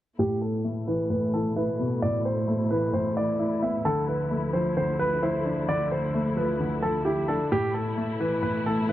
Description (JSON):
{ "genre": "hip hop", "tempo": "131 BPM", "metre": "4/4", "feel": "half-time", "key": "A minor", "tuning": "A4 = 441 Hz", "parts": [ { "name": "dark concert grand piano", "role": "melody", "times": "0.2-8.9 s", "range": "G4 to E5", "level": "-28 LUFS", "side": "right 1 dB", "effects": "low-pass filter" }, { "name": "dark baby grand piano", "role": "accompaniment", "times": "0.2-8.9 s", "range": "A2 to E4", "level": "-27 LUFS", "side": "left 1 dB", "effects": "low-pass filter" }, { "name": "dark symphonic string section", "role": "sustained chords", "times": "0.2-8.9 s", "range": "D2 to E4", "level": "-32 LUFS", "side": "equal", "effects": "low-pass filter" } ], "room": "light reverb", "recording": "dark, warm production", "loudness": "-24 LUFS", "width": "side -13 dB against mid", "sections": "0.2-8.9 A section", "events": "filter sweep 0.2-8.9", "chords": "0.2 Asus2; 3.9 Dmadd9; 7.5 Asus2", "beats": "| 0.19 0.65 1.10 1.56 | 2.02 2.48 2.94 3.39 | 3.85 4.31 4.77 5.22 | 5.68 6.14 6.60 7.06 | 7.51 7.97 8.43 8.89" }